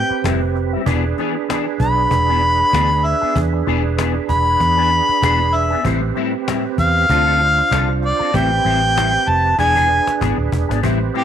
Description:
straight-eighth soul blues; 96 BPM; 4/4; swing 56% on 16ths; A4 = 440 Hz
warm harmonica; melody; 0.0-11.2 s; G4 to B5; -16 LUFS; left 1 dB; overdrive
percussive tonewheel organ; accompaniment; 0.0-11.2 s; C4 to C5; -23 LUFS; right 15 dB; slow rotary speaker, overdrive, chorus vibrato
electric guitar with an envelope filter; stabs; 0.1-11.2 s; A2 to A4; -24 LUFS; left 12 dB; ensemble chorus
vintage muted fingered electric bass; bass; 0.1-11.1 s; D1 to E2; -20 LUFS; equal
cajon; drums; 0.2-11.2 s; -25 LUFS; left 3 dB
light reverb, studio ambience; 1960s-style stereo with parts hard left and right; -14 LUFS; side -9 dB against mid
0.0-10.8 A section
drum fill 9.6-10.8
0.0 Am7; 0.9 E7; 5.8 Am7; 7.1 Dm7; 8.3 Am7; 9.6 E7
0.24 | 0.86 1.49 2.11 2.73 | 3.35 3.98 4.60 5.22 | 5.85 6.47 7.09 7.71 | 8.34 8.96 9.58 10.21 | 10.83

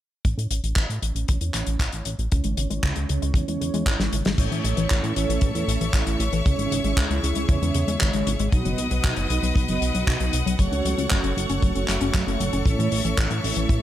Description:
italo disco; 116 BPM; 4/4; straight; A4 = 444 Hz
mellow synth brass; stabs; 0.2-13.8 s; A2 to E5; -29 LUFS; right 4 dB; chorus
chorused synth bass; bass; 0.2-13.8 s; F#1 to A2; -26 LUFS; equal
damped 70s drum kit; drums; 0.2-13.8 s; crash cymbal, handclaps, hi-hat, snare drum; -28 LUFS; left 2 dB; small room ambience
kick drum; drums; 0.2-13.8 s; -21 LUFS; equal; small room ambience
warbly dusty pluck; arpeggios; 2.3-13.8 s; A2 to C#4; -30 LUFS; left 3 dB; chorus, ping-pong delay
bright studio string section; sustained chords; 4.4-13.8 s; G#4 to D#6; -30 LUFS; left 3 dB
light reverb, small room ambience; -21 LUFS; side -12 dB against mid
0.2-4.4 A section; 4.4-13.8 B section
filter sweep on analog synth bass 0.2-4.4; filter sweep on analog polysynth 0.2-4.4; drum fill 4.0-4.4
0.2 A; 2.3 C#m; 4.4 A; 6.5 C#m; 8.5 B; 10.6 F#m; 12.7 A
| 0.25 0.77 1.28 1.80 | 2.32 2.83 3.35 3.87 | 4.38 4.90 5.42 5.94 | 6.45 6.97 7.49 8.01 | 8.52 9.04 9.56 10.07 | 10.59 11.11 11.63 12.14 | 12.66 13.18 13.70

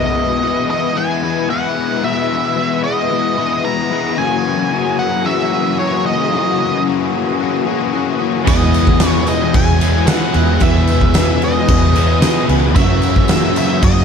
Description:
rock, shoegaze and dream pop; 112 BPM; 4/4; straight; E lydian; A4 = 440 Hz
octave-fuzz lead guitar; melody; 0.0-14.0 s; C#5 to A#5; -20 LUFS; right 3 dB; distortion, analog delay
soft additive organ-like pad; sustained chords; 0.0-14.0 s; F#3 to D#6; -24 LUFS; right 1 dB; ensemble chorus, built-in reverb
overdriven electric guitar; riff; 0.0-14.0 s; E2 to G#4; -18 LUFS; left 9 dB; analog chorus
crunchy overdriven guitar; riff; 8.4-14.0 s; E2 to F#3; -21 LUFS; equal
overdriven semi-hollow guitar; riff; 8.5-14.0 s; E2 to F#4; -24 LUFS; right 13 dB; reverse reverb
vintage muted fingered electric bass; bass; 8.5-14.0 s; C#2 to E3; -17 LUFS; right 1 dB
huge arena drum kit; drums; 8.5-14.0 s; crash cymbal, kick drum, snare drum; -16 LUFS; equal
tambourine; percussion; 8.5-13.9 s; -34 LUFS; right 19 dB
studio reverb; dark, warm production; -13 LUFS; side -6 dB against mid
0.0-14.0 A section
0.0 Emaj7; 4.2 F#13; 8.5 Emaj7; 12.8 F#13
0.43 0.97 1.50 | 2.04 2.58 3.11 3.65 | 4.19 4.72 5.26 5.80 | 6.33 6.87 7.41 7.94 | 8.48 9.01 9.55 10.08 | 10.62 11.15 11.69 12.22 | 12.76 13.29 13.83

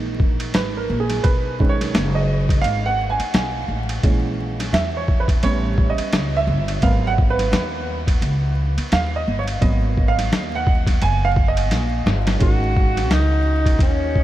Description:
hip hop, jazz-hop; 86 BPM; 4/4; swing 59% on 16ths; G# minor; A4 = 443 Hz
dark grand piano; accompaniment; 0.0-14.2 s; D#3 to G#5; -24 LUFS; right 4 dB; analog chorus
upright bass; bass; 0.0-14.2 s; F#1 to E2; -22 LUFS; equal
boom bap sampler-style drum kit; drums; 0.2-14.2 s; hi-hat, kick drum, ride cymbal, snare drum; -20 LUFS; equal
breathy tenor saxophone; melody; 12.4-14.2 s; C#4 to F#4; -22 LUFS; left 1 dB; analog delay
light reverb, studio reverb; vinyl crackle; -17 LUFS; side -14 dB against mid
0.0-12.4 A section; 12.4-14.2 B section
grand piano solo 0.0-12.4; drum fill 11.7-12.4
0.0 F#13 (rootless); 1.2 B69; 4.0 A#m7b5; 5.4 A9; 6.8 G#m9; 12.4 G#sus2
0.55 | 1.24 1.94 2.64 3.34 | 4.03 4.73 5.43 6.13 | 6.82 7.52 8.22 8.92 | 9.62 10.31 11.01 11.71 | 12.40 13.10 13.80

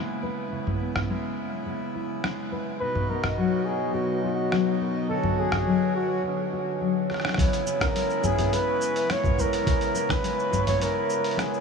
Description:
folktronica; 105 BPM; 4/4; straight; C# dorian; A4 = 440 Hz
accordion; sustained chords; 0.0-11.6 s; B2 to F#4; -34 LUFS; right 1 dB
nylon-string guitar; arpeggios; 0.0-11.6 s; B2 to B4; -29 LUFS; left 3 dB; low-pass filter, analog delay
lo-fi sampler-style drum kit; drums; 0.7-11.6 s; cabasa, congas, hi-hat, rim click; -30 LUFS; equal; overdrive, low-pass filter on hats, low-pass filter on perc, low-pass filter on snare
mellow flugelhorn; melody; 2.8-11.6 s; F#4 to C#5; -28 LUFS; equal; analog delay
vibraphone with medium hard mallets; second line; 3.0-11.6 s; B4 to C#6; -32 LUFS; right 4 dB; tape echo
electronic kick drum; drums; 7.4-10.2 s; -26 LUFS; equal; overdrive
wet huge ambient reverb, RT60 7.9 s; dreamy mix soaked in reverb; -23 LUFS; side -5 dB against mid
0.0-7.4 A section; 7.4-11.6 B section
filter sweep on drum 0.0-7.4; filter sweep on nylon-string guitar 0.0-7.4; break 6.2-7.4; drum fill 7.1
0.0 C#m7; 2.8 Bmaj7; 5.1 Dmaj7; 7.4 C#m7
| 0.52 1.09 1.67 2.24 | 2.81 3.38 3.95 4.52 | 5.09 5.67 6.24 6.81 | 7.38 7.95 8.52 9.09 | 9.66 10.24 10.81 11.38

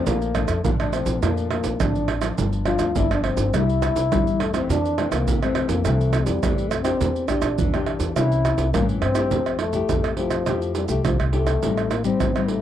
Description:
samba and choro; 104 BPM; 4/4; straight; F major from 9.3 s; A4 = 439 Hz
breathy trombone; melody; 0.0-12.6 s; F3 to F4; -25 LUFS; left 3 dB
nylon-string guitar; accompaniment; 0.0-12.6 s; F2 to G4; -27 LUFS; left 6 dB
upright bass; bass; 0.1-12.6 s; G1 to Bb2; -25 LUFS; equal
maracas, surdo, pandeiro and tamborim; percussion; 0.1-12.6 s; -24 LUFS; right 5 dB
little or no reverb; dry, close 1970s-style studio recording; -19 LUFS; side -11 dB against mid
0.0-9.3 A section; 9.3-12.6 B section
0.1 Bbmaj7; 2.4 Gm7; 3.5 C7; 4.7 Fmaj7; 7.0 Em7b5; 8.2 C7b9; 9.3 Fmaj9; 11.6 Am7b5
| 0.07 0.65 1.23 1.81 | 2.38 2.96 3.54 4.12 | 4.70 5.27 5.85 6.43 | 7.00 7.58 8.16 8.74 | 9.32 9.89 10.47 11.05 | 11.63 12.21

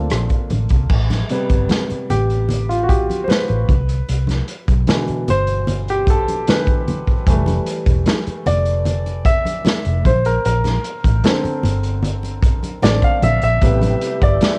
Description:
lush 1970s-style soul; 76 BPM; 4/4; straight; A4 = 440 Hz
clear grand piano; accompaniment; 0.0-14.6 s; B2 to F5; -23 LUFS; equal; cassette tape
vintage muted fingered electric bass; bass; 0.0-14.4 s; E1 to C2; -22 LUFS; equal; tube saturation
vintage drum kit; drums; 0.1-14.6 s; crash cymbal, hi-hat, kick drum, rim click, snare drum; -20 LUFS; equal; cassette tape
congas; percussion; 0.1-14.6 s; -28 LUFS; equal
tonewheel organ; sustained chords; 13.6-14.6 s; C3 to G4; -30 LUFS; equal; slow rotary speaker, overdrive, chorus vibrato, cassette tape
light reverb; home recording on cassette; -18 LUFS; mono
0.9-14.6 A section
grand piano solo 0.9-14.6
0.0 Bbmaj7; 0.9 Am7; 3.7 Cmaj7; 7.3 Fmaj7; 10.0 Bbmaj7; 13.6 Am7
0.11 | 0.90 1.70 2.49 3.29 | 4.08 4.88 5.67 6.47 | 7.26 8.06 8.85 9.65 | 10.44 11.24 12.03 12.83 | 13.62 14.42

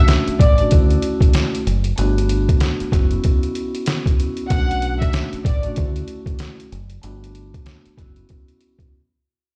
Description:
hip hop, boom-bap hip-hop; 95 BPM; 4/4; swing 60% on 16ths; A4 = 440 Hz
rich studio violin section; melody; 0.0-0.6, 4.5-5.6 s; D5 to F#5; -27 LUFS; equal; high-pass filter, low-pass filter, analog delay
vibraphone with soft mallets; accompaniment; 0.0-8.9 s; A3 to F#4; -27 LUFS; equal; cassette tape, high-pass filter, low-pass filter
trip hop sampler-style drum kit; drums; 0.1-8.9 s; hi-hat, kick drum, snare drum; -19 LUFS; equal
deep dub fingered electric bass; bass; 0.3-8.2 s; F#1 to D2; -23 LUFS; equal
little or no reverb; played on a big sound system in a bare room, stone room reverb; -18 LUFS; mono
0.0-9.6 A section
fade-out 0.0-9.6; break 8.9-9.6
0.0 Bm7 (rootless); 0.7 Dmaj7; 2.0 Gmaj7; 2.9 F#7sus4; 4.5 Bm7; 5.8 Dmaj7; 7.0 Gmaj7; 8.0 F#7sus4
0.08 0.71 1.34 | 1.98 2.61 3.24 3.87 | 4.50 5.13 5.76 6.40 | 7.03 7.66 8.29 8.92

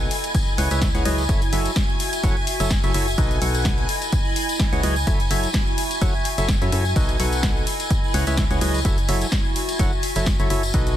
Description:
piano house; 127 BPM; 4/4; swing 55% on 16ths; F# dorian; A4 = 438 Hz
analog string pad; sustained chords; 0.0-11.0 s; G#5 to G#6; -30 LUFS; left 1 dB; ensemble chorus, sidechain pumping
percussive organ stab; riff; 0.0-10.9 s; B2 to F#5; -27 LUFS; equal; chorus, sidechain pumping, ping-pong delay
organ-like FM bass; bass; 0.0-11.0 s; F#1 to F#2; -24 LUFS; equal; sidechain pumping
tambourine; percussion; 0.0-11.0 s; -33 LUFS; left 3 dB
warbly tape-like pad; texture; 0.0-11.0 s; E4 to B5; -30 LUFS; right 1 dB; chorus, built-in reverb, sidechain pumping
house drum kit; drums; 0.1-11.0 s; hi-hat, snare drum; -28 LUFS; left 1 dB; studio reverb
electronic kick drum; drums; 0.3-10.8 s; -22 LUFS; equal; studio reverb
digital ambience; dense, heavily limited modern master; -18 LUFS; side -12 dB against mid
0.0-11.0 A section
0.1 C#m9; 1.3 F#m7; 3.2 B7; 3.9 C#m9; 5.1 F#m7; 7.0 B7; 7.7 C#m9; 8.8 F#m7
0.35 0.82 | 1.29 1.76 2.24 2.71 | 3.18 3.65 4.13 4.60 | 5.07 5.54 6.01 6.49 | 6.96 7.43 7.91 8.38 | 8.85 9.32 9.79 10.27 | 10.74

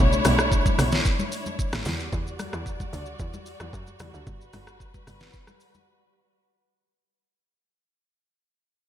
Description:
amapiano; 112 BPM; 4/4; straight; A4 = 438 Hz
dark studio string section; sustained chords; 0.0-6.4 s; G3 to D5; -29 LUFS; left 1 dB; sidechain pumping
tight log drum bass; bass; 0.0-5.3 s; G1 to F#2; -28 LUFS; equal
smooth R&B drum kit; drums; 0.1-5.9 s; hi-hat, kick drum, rim click, shaker, snare drum; -25 LUFS; equal; gated reverb
congas; percussion; 0.3-5.9 s; -33 LUFS; left 2 dB
light reverb; bright 1980s-style digital production; -23 LUFS; side -11 dB against mid
0.0-6.4 A section
drop 0.0-6.4; fade-out 0.0-6.4; break 5.9-6.4
0.0 Bm11; 1.9 Em9; 4.3 Gmaj7
0.52 1.05 1.59 | 2.12 2.66 3.20 3.73 | 4.27 4.80 5.34 5.88

